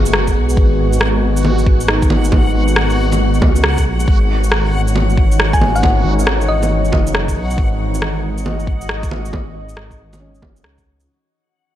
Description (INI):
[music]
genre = future garage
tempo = 137 BPM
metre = 4/4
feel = swing 64% on 16ths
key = unclear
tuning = A4 = 440 Hz
[part]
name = felt-muted upright piano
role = accompaniment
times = 0.0-4.1, 10.2-11.1 s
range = C#4 to G#4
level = -28 LUFS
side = right 3 dB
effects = none
[part]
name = deep dark ambient pad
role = sustained chords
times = 0.0-11.0 s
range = E3 to D#5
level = -22 LUFS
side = left 1 dB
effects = chorus, built-in reverb, sidechain pumping
[part]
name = dark detuned saw bass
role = bass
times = 0.0-11.1 s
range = F#1 to C#2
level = -17 LUFS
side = equal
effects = sidechain pumping
[part]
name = backwards swelling texture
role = texture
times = 0.0-11.1 s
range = F#4 to F#5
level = -26 LUFS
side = left 1 dB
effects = built-in reverb
[part]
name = electronic shaker, rim click and bongos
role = drums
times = 0.1-11.1 s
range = none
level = -19 LUFS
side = right 1 dB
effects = none
[part]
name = electronic kick drum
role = drums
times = 0.3-10.8 s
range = none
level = -15 LUFS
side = equal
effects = none
[part]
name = thumb-piano-like synth pluck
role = melody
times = 5.5-6.9 s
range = D#5 to G#5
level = -23 LUFS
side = left 1 dB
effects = chorus, cassette tape, tape echo
[sound]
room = digital ambience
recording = none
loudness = -12 LUFS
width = side -12 dB against mid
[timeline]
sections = 0.0-11.1 A section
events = fade-out 6.4-11.1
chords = 0.0 G#m7; 4.1 C#madd9